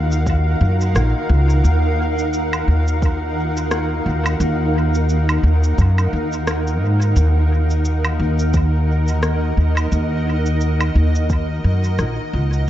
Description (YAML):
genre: ambient dub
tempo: 87 BPM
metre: 4/4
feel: swing 57% on 16ths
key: Eb minor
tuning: A4 = 439 Hz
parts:
  - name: granular cloud pad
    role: sustained chords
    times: 0.0-12.7 s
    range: Eb4 to Gb5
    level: -22 LUFS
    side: equal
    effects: built-in reverb
  - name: upright bass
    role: bass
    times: 0.0-12.7 s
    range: Bb1 to Ab2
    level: -16 LUFS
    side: equal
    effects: none
  - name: electronic cabasa, rim click and woodblock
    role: drums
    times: 0.1-12.7 s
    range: none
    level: -26 LUFS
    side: right 1 dB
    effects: studio reverb, dub echo
  - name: electronic kick drum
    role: drums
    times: 0.3-11.5 s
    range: none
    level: -20 LUFS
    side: equal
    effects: studio reverb
room: digital ambience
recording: dark, warm production, nothing above 7.7 kHz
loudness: -15 LUFS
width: side -12 dB against mid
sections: 0.0-12.7 A section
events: fade-out 10.8-12.7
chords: 0.0 Ebmadd9